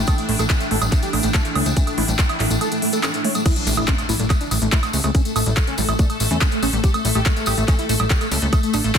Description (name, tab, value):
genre	psychedelic trance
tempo	142 BPM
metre	4/4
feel	straight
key	unclear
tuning	A4 = 439 Hz
part	wide unison lead	melody	0.0-9.0 s	A3 to C#5	-26 LUFS	equal	phaser, sidechain pumping, ping-pong delay
part	swarming drone	sustained chords	0.0-9.0 s	E3 to A4	-27 LUFS	left 1 dB	built-in reverb, sidechain pumping
part	plucky analog bass	bass	0.0-8.9 s	A1 to E2	-22 LUFS	equal	none
part	deep dark ambient pad	texture	0.0-3.5 s	A3 to G5	-31 LUFS	equal	chorus, built-in reverb, sidechain pumping
part	liquid acid bass	riff	0.1-9.0 s	G3 to C#4	-28 LUFS	moving between left 4 dB and right 3 dB	chorus, auto-pan, sidechain pumping, digital delay
part	big-room dance drum kit	drums	0.1-9.0 s	crash cymbal, handclaps, hi-hat, woodblock	-24 LUFS	right 1 dB	none
part	electronic kick drum	drums	0.1-9.0 s	none	-18 LUFS	equal	none
part	tambourine	percussion	0.1-9.0 s	none	-30 LUFS	left 3 dB	none
part	impact	sound effects	3.5-5.1 s	none	-32 LUFS	equal	none
room	little or no reverb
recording	dense, heavily limited modern master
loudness	-17 LUFS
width	side -8 dB against mid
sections	0.0-3.5 A section; 3.5-9.0 B section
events	drop 3.5-9.0; impact 3.5-5.1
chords	0.0 A5